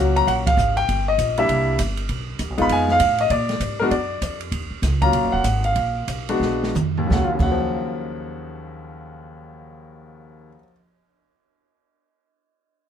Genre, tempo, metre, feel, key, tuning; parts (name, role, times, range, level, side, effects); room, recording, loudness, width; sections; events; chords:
jazz piano trio; 168-198 BPM; 4/4; swing 62% on 8ths; Eb minor; A4 = 440 Hz
warm grand piano; melody; 0.0-10.7 s; Eb2 to Cb6; -21 LUFS; left 1 dB
upright bass; bass; 0.0-10.6 s; Eb1 to Bb2; -24 LUFS; equal
open jazz drum kit; drums; 0.2-7.5 s; crash cymbal, hi-hat, kick drum, ride cymbal, snare drum, toms; -27 LUFS; right 3 dB
moderate club reverb, RT60 0.6 s; minimal, uncompressed stereo recording; -18 LUFS; side -8 dB against mid
0.0-2.1 A section; 2.1-7.1 B section; 7.1-10.0 C section
band accent 0.4; slowing down 4.5-7.1; drum fill 6.4-7.1
0.0 Ebm9 (rootless); 0.9 Gm; 1.5 C7; 2.1 Fm7b5; 3.3 Bb7b13; 4.5 Ebm9; 5.8 Bb7b9b13; 7.1 Ebm9